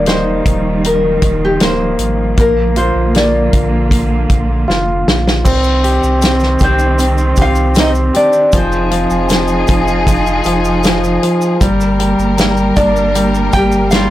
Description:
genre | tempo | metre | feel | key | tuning
pop ballad | 78 BPM | 4/4 | straight | Eb major | A4 = 440 Hz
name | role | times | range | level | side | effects
nylon-string guitar | melody | 0.0-14.1 s | C4 to G5 | -16 LUFS | left 1 dB | none
clear concert grand piano | accompaniment | 0.0-14.1 s | Eb3 to G4 | -16 LUFS | left 1 dB | none
warm studio string section | sustained chords | 0.0-14.1 s | D3 to Bb4 | -18 LUFS | right 2 dB | none
warm sub bass | bass | 0.0-14.1 s | D1 to C2 | -17 LUFS | equal | none
natural country drum kit | drums | 0.1-14.1 s | crash cymbal, hi-hat, kick drum, snare drum | -15 LUFS | equal | none
tube shaker | percussion | 5.5-14.1 s | none | -31 LUFS | right 5 dB | none
room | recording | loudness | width
little or no reverb | blown-out, overdriven recording, overdrive | -10 LUFS | side -14 dB against mid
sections
0.0-5.5 A section; 5.5-14.1 B section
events
drum fill 4.7-5.5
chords
0.0 Ebadd9; 2.4 Bb; 5.5 Cmadd9; 8.5 Fm7; 11.6 Ebmaj7/G (rootless)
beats
0.07 0.84 1.61 | 2.38 3.15 3.92 4.69 | 5.46 6.22 6.99 7.76 | 8.53 9.30 10.07 10.84 | 11.61 12.38 13.15 13.92

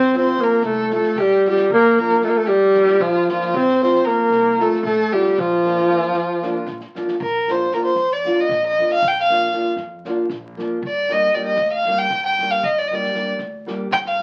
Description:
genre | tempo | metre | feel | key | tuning
balkan folk, Balkan wedding band | 230 BPM (eighths) | 7/8 | straight | Bb major | A4 = 438 Hz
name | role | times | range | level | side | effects
warm alto saxophone | melody | 0.0-6.7 s | F3 to C4 | -18 LUFS | equal | none
clear violin | second line | 0.0-14.2 s | F4 to G5 | -22 LUFS | equal | none
upright bass | bass | 0.0-14.2 s | G1 to F2 | -41 LUFS | equal | none
unplugged drum kit | percussion | 0.0-14.2 s | kick drum, snare drum | -41 LUFS | equal | none
nylon-string guitar | accompaniment | 0.1-14.2 s | F3 to G4 | -27 LUFS | equal | none
room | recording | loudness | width
wet club reverb, RT60 0.6 s | very old 78 rpm record, vinyl crackle | -18 LUFS | mono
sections
0.0-7.2 A section; 7.2-14.2 B section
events
violin solo 7.2-14.2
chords
0.0 F/Bb; 1.7 Bb; 3.5 F/Bb; 5.4 Bb; 10.8 Gm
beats
0.13 0.39 0.66 0.92 1.18 1.44 | 1.71 1.97 2.23 2.50 2.76 3.02 3.28 | 3.54 3.81 4.07 4.33 4.59 4.85 5.12 | 5.38 5.64 5.90 6.16 6.42 6.68 6.94 | 7.21 7.47 7.73 7.99 8.25 8.51 8.77 | 9.03 9.29 9.55 9.81 10.07 10.33 10.59 | 10.84 11.10 11.36 11.62 11.88 12.14 12.39 | 12.65 12.91 13.17 13.43 13.68 13.94 14.20

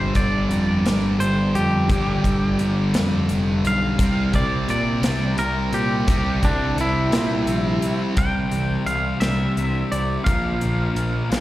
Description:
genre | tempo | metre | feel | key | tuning
quiet-loud alternative rock | 57 BPM (dotted quarters) | 6/8 | straight | unclear | A4 = 440 Hz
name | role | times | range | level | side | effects
twangy electric guitar | melody | 0.0-11.4 s | D4 to G5 | -25 LUFS | equal | harmonic tremolo, slapback echo
high-gain distorted guitar | riff | 0.0-8.2 s | G2 to C4 | -28 LUFS | right 7 dB | distortion
thick fuzz guitar | riff | 0.0-11.4 s | G2 to C4 | -25 LUFS | left 4 dB | distortion
fuzz picked electric bass | bass | 0.0-11.4 s | F1 to C3 | -23 LUFS | right 1 dB | overdrive
big rock drum kit | drums | 0.1-11.4 s | hi-hat, kick drum, snare drum | -24 LUFS | equal | none
twelve-string electric guitar | arpeggios | 8.2-11.4 s | Bb2 to E4 | -29 LUFS | right 2 dB | phaser
room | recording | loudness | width
little or no reverb | live gig heard through the venue's PA, recital hall reverb | -18 LUFS | side -15 dB against mid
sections
0.0-8.2 A section; 8.2-11.4 B section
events
clean electric guitar solo 0.0-8.2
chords
0.0 G5; 4.0 Cadd9; 10.3 Bbadd9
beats
0.86 | 1.90 2.94 | 3.98 5.03 | 6.07 7.12 | 8.16 9.21 | 10.26 11.31

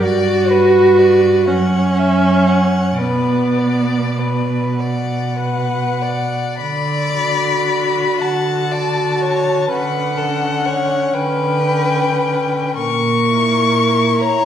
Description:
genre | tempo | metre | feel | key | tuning
classical, slow romantic movement for string quartet | 32-43 BPM (dotted quarters) | 6/8 | rubato | B minor, D major from 6.6 s | A4 = 440 Hz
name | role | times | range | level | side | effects
warm violin | melody | 0.0-14.4 s | B4 to C#6 | -21 LUFS | left 5 dB | none
clear violin | second line | 0.0-14.4 s | A4 to F#5 | -21 LUFS | left 1 dB | none
rich viola | accompaniment | 0.0-14.4 s | B3 to F#4 | -17 LUFS | right 1 dB | none
warm cello | bass | 0.0-14.4 s | F#2 to D3 | -19 LUFS | right 2 dB | none
room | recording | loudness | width
wet recital hall reverb, RT60 1.3 s | heard from further back in the room | -14 LUFS | side -9 dB against mid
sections
0.0-6.6 A section; 6.6-14.4 B section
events
none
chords
0.0 Gmaj7; 1.5 F#5; 3.0 Bm; 6.6 D; 9.7 Gmaj7#11/D; 12.8 A#dim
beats
| 0.02 1.47 | 3.01 4.78 | 6.62 8.21 | 9.69 11.13 | 12.77 14.21

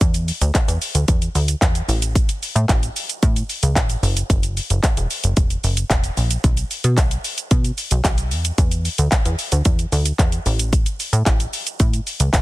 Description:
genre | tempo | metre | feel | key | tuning
dance-pop | 112 BPM | 4/4 | straight | unclear | A4 = 442 Hz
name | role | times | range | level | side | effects
plucky analog bass | bass | 0.0-12.4 s | E1 to B2 | -19 LUFS | equal | sidechain pumping
house drum kit | drums | 0.0-12.4 s | handclaps, hi-hat, kick drum, shaker | -19 LUFS | equal | soft clipping on snare
room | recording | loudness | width
digital ambience | dense, heavily limited modern master | -17 LUFS | side -18 dB against mid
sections
0.0-12.4 A section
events
none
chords
none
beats
| 0.01 0.55 1.08 1.62 | 2.15 2.69 3.23 3.76 | 4.30 4.83 5.37 5.91 | 6.44 6.98 7.51 8.05 | 8.58 9.12 9.65 10.19 | 10.73 11.26 11.80 12.33

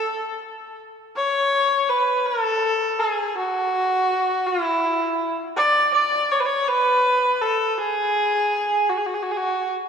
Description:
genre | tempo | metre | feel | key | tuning
persian | 54 BPM (dotted quarters) | 6/8 | straight | A dastgah mahur | A4 = 441 Hz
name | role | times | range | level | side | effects
clear kamancheh | solo | 0.0-9.7 s | E4 to D5 | -19 LUFS | equal | none
room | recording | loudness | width
wet church reverb, RT60 3.1 s | recorded in a church or concert hall | -19 LUFS | side -7 dB against mid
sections
0.0-1.2 A section; 1.2-9.9 B section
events
none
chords
none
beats
0.05 | 1.16 2.27 | 3.37 4.48 | 5.59 6.69 | 7.80 8.91

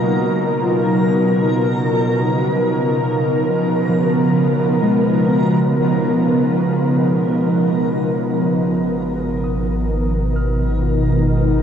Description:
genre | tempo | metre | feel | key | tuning
ambient | 65 BPM | 4/4 | straight | unclear | A4 = 443 Hz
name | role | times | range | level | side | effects
ethereal airy pad | sustained chords | 0.0-11.6 s | B2 to A#4 | -17 LUFS | equal | ensemble chorus, built-in reverb, shimmer reverb
muted felt-like synth keys | arpeggios | 0.0-11.6 s | E#3 to E#6 | -22 LUFS | equal | chorus, diffuse ambient delay
bowed-like drone | drone | 0.0-8.6 s | B2 | -24 LUFS | right 1 dB | built-in reverb
backwards swelling texture | texture | 0.0-11.6 s | A#4 to A#5 | -29 LUFS | left 1 dB | built-in reverb, shimmer reverb
warm sub bass | bass | 8.5-11.6 s | G#1 | -21 LUFS | equal | none
room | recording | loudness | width
wet huge ambient reverb, RT60 9.4 s | worn, warbling old tape, cassette tape, warbly pitch drift | -15 LUFS | side -8 dB against mid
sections
0.0-8.5 A section; 8.5-11.6 B section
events
fade-out on synth texture 0.0-8.5; fade-in on synth keys 8.5-11.6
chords
0.0 F#6/B; 1.1 C#13/B; 8.5 G#m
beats
0.21 | 1.13 2.06 2.98 3.90 | 4.83 5.75 6.67 7.59 | 8.52 9.44 10.36 11.29

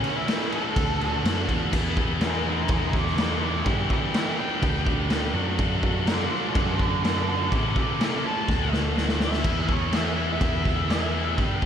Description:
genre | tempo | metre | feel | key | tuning
quiet-loud alternative rock | 124 BPM | 4/4 | straight | unclear | A4 = 436 Hz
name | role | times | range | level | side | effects
octave-fuzz lead guitar | melody | 0.0-11.4 s | C#4 to A5 | -30 LUFS | right 1 dB | distortion, slapback echo
distorted electric guitar | riff | 0.0-11.7 s | A2 to G#4 | -32 LUFS | right 11 dB | overdrive
heavy high-gain guitar | riff | 0.0-11.7 s | A2 to G#4 | -31 LUFS | left 12 dB | distortion, slapback echo
raw garage drum kit | drums | 0.0-11.7 s | crash cymbal, kick drum, snare drum | -25 LUFS | equal | none
picked electric bass | bass | 0.8-11.6 s | A1 to G2 | -28 LUFS | equal | none
room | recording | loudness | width
light reverb, small room ambience | none | -22 LUFS | side -8 dB against mid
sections
0.0-1.7 A section; 1.7-11.7 B section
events
lead electric guitar solo 1.7-11.7; drum fill 8.5-9.4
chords
0.0 A; 0.8 Dadd9; 1.7 E; 3.7 G; 5.3 Dadd9/F#; 7.5 A; 8.5 D; 9.4 E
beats
0.27 0.76 1.24 | 1.72 2.20 2.69 3.17 | 3.65 4.13 4.62 5.10 | 5.58 6.07 6.55 7.03 | 7.51 8.00 8.48 8.96 | 9.45 9.93 10.41 10.89 | 11.38

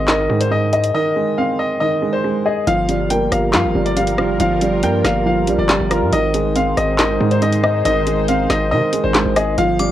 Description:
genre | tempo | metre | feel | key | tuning
hip hop, drill | 139 BPM | 4/4 | half-time | unclear | A4 = 441 Hz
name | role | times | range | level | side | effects
bright upright piano | melody | 0.0-9.9 s | Ab4 to G5 | -20 LUFS | left 2 dB | cassette tape
dark baby grand piano | accompaniment | 0.0-9.9 s | Eb3 to Eb5 | -18 LUFS | right 2 dB | cassette tape
distorted 808-style bass | bass | 0.0-9.9 s | F1 to C3 | -21 LUFS | left 1 dB | distortion
drill drum kit | drums | 0.1-9.9 s | handclaps, hi-hat, rim click, snare drum | -20 LUFS | left 1 dB | none
sweeping resonant pad | sustained chords | 2.7-9.9 s | G3 to C5 | -26 LUFS | equal | chorus, cassette tape
glassy synth bell | second line | 9.8-9.9 s | D6 | -22 LUFS | left 3 dB | chorus, phaser, cassette tape
room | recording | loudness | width
light reverb, digital ambience | home recording on cassette | -14 LUFS | side -12 dB against mid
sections
0.0-2.7 A section; 2.7-9.9 B section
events
break 0.9-2.7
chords
0.0 Ab; 2.7 Gm7; 6.1 Ab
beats
0.08 0.51 | 0.94 1.38 1.81 2.24 | 2.67 3.10 3.54 3.97 | 4.40 4.83 5.26 5.69 | 6.12 6.56 6.99 7.42 | 7.85 8.28 8.71 9.15 | 9.58

